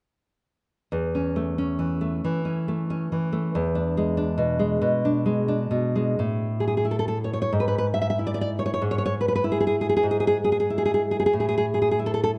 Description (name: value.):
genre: romantic piece for solo classical guitar.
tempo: 92 BPM.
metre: 4/4.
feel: uneven beats, rubato.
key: A major.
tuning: A4 = 440 Hz.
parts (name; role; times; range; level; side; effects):
nylon-string guitar; solo; 0.9-12.4 s; E2 to E5; -24 LUFS; equal; none.
room: moderate concert hall reverb, RT60 1.8 s.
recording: nothing above 11.0 kHz.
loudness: -24 LUFS.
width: mono.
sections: 0.9-6.2 A section; 6.2-12.4 B section.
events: none.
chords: 0.9 A/E; 3.5 E7; 6.2 A5; 7.5 E/G#; 11.3 A5.